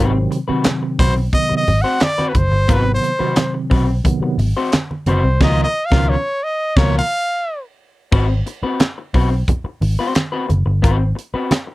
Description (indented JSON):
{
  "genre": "funk",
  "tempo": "88 BPM",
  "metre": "4/4",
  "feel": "straight",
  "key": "Ab mixolydian",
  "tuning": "A4 = 440 Hz",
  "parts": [
    { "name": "electric guitar through a small old amp", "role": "accompaniment", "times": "0.0-11.7 s", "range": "Cb4 to C5", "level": "-22 LUFS", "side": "left 4 dB", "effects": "none" },
    { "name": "mellow tine electric piano", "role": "stabs", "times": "0.0-7.0 s", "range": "Cb3 to Db4", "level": "-21 LUFS", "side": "right 2 dB", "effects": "fast stereo tremolo" },
    { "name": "vintage muted picked electric bass", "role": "bass", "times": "0.0-11.4 s", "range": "Gb1 to Db2", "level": "-16 LUFS", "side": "equal", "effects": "none" },
    { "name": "tight funk drum kit", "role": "drums", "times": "0.3-11.7 s", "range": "crash cymbal, handclaps, hi-hat, kick drum, snare drum", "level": "-17 LUFS", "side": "equal", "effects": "none" },
    { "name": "congas", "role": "percussion", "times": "0.7-11.7 s", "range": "none", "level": "-23 LUFS", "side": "right 2 dB", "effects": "none" },
    { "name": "bright trumpet", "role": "melody", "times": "1.0-7.6 s", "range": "B4 to Gb5", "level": "-19 LUFS", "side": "equal", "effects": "none" }
  ],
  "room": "little or no reverb",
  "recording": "dry, close 1970s-style studio recording",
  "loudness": "-15 LUFS",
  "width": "side -18 dB against mid",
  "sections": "0.0-8.1 A section; 8.1-11.7 B section",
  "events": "trumpet solo 0.0-8.1; band accent 5.4-8.1",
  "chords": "0.0 Ab7#9; 5.4 Db13; 8.1 Ab7#9"
}